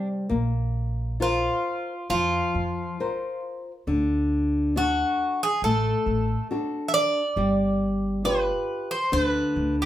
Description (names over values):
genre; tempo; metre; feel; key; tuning
fado-style ballad; 68 BPM; 4/4; rubato; unclear; A4 = 439 Hz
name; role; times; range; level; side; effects
Greek bouzouki; melody; 0.0-9.9 s; F4 to E5; -25 LUFS; equal; none
flamenco guitar; accompaniment; 0.0-9.9 s; C3 to C5; -26 LUFS; left 1 dB; none
upright bass; bass; 0.3-9.8 s; G1 to F2; -28 LUFS; equal; none
room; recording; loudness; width
wet small room ambience, RT60 0.5 s; heard from further back in the room; -22 LUFS; side -12 dB against mid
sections
0.3-9.9 A section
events
none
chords
0.3 Bbsus2; 3.9 D; 7.4 G7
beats
| 0.32 1.21 2.10 3.00 | 3.88 4.77 5.64 6.51 | 7.38 8.25 9.13